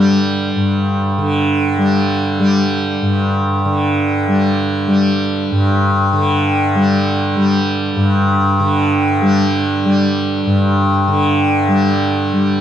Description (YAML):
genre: world meditative, free-time meditation music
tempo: free time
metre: none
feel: none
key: unclear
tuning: A4 = 440 Hz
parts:
  - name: tanpura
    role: solo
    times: 0.0-12.6 s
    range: G2 to G3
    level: -13 LUFS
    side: equal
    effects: diffuse ambient delay
room: wet church reverb, RT60 3.6 s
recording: nothing above 10.8 kHz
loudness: -13 LUFS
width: side -10 dB against mid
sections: 0.0-12.6 A section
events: none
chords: none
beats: free time